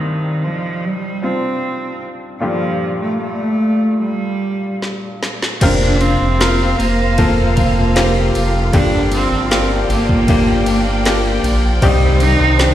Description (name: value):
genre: pop ballad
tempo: 77 BPM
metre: 4/4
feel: straight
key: G minor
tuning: A4 = 438 Hz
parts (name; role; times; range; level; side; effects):
- warm cello; melody; 0.0-12.7 s; Eb3 to Eb4; -18 LUFS; right 1 dB; slapback echo, tape echo
- clear upright piano; accompaniment; 0.0-12.7 s; C2 to D5; -20 LUFS; left 2 dB; slapback echo
- smooth R&B drum kit; drums; 4.8-12.7 s; crash cymbal, kick drum, ride cymbal, snare drum; -20 LUFS; equal; none
- warm studio string section; sustained chords; 5.6-12.7 s; Eb3 to G5; -23 LUFS; right 1 dB; none
- direct-recorded clean electric guitar; arpeggios; 5.6-12.7 s; G2 to Bb4; -24 LUFS; left 3 dB; slapback echo
- sub bass with octave; bass; 5.6-12.7 s; F1 to C2; -17 LUFS; equal; none
room: studio ambience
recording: live gig heard through the venue's PA, recital hall reverb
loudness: -13 LUFS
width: side -12 dB against mid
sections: 0.0-5.6 A section; 5.6-12.7 B section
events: drum fill 4.8-5.6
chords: 0.0 Cmadd9; 2.4 Gm7; 5.6 Fsus4; 8.7 Gm7; 11.8 Cmadd9